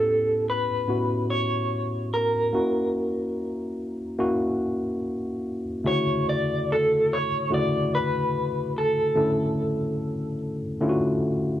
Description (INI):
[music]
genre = soul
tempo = 72 BPM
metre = 4/4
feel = swing 54% on 16ths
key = D major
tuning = A4 = 440 Hz
[part]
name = electric guitar through a small old amp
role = melody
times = 0.0-10.4 s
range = A4 to D5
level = -24 LUFS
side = equal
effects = tremolo
[part]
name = tine electric piano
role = accompaniment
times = 0.0-11.6 s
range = A2 to A4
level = -25 LUFS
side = left 1 dB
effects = cassette tape
[sound]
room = light reverb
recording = home recording on cassette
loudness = -23 LUFS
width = side -12 dB against mid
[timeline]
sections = 0.0-5.9 A section; 5.9-11.6 B section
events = none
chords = 0.0 A7; 2.5 F#7; 5.9 Dmaj9